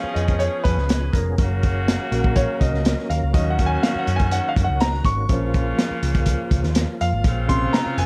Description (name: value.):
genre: uptempo 1960s-style soul.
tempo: 123 BPM.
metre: 4/4.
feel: straight.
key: Bb minor.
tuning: A4 = 439 Hz.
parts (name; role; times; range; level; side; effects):
bright saxophone section; second line; 0.0-8.1 s; Db3 to Ab4; -32 LUFS; equal; none.
warm grand piano; accompaniment; 0.0-8.1 s; C3 to Db6; -28 LUFS; equal; none.
tonewheel organ; sustained chords; 0.0-8.1 s; Eb3 to Bb4; -33 LUFS; equal; fast rotary speaker, chorus vibrato.
hollow-body short-scale picked electric bass; bass; 0.0-8.1 s; F1 to Gb2; -25 LUFS; equal; none.
crunchy breakbeat drum kit; drums; 0.2-8.1 s; hi-hat, kick drum, snare drum; -24 LUFS; equal; none.
room: light reverb.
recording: dark, warm production.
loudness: -21 LUFS.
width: mono.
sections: 0.0-8.1 A section.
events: grand piano solo 0.0-8.1.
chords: 0.0 Db7; 1.4 Gb; 3.3 Ebm7; 5.3 Bbm; 7.2 Bbmadd9.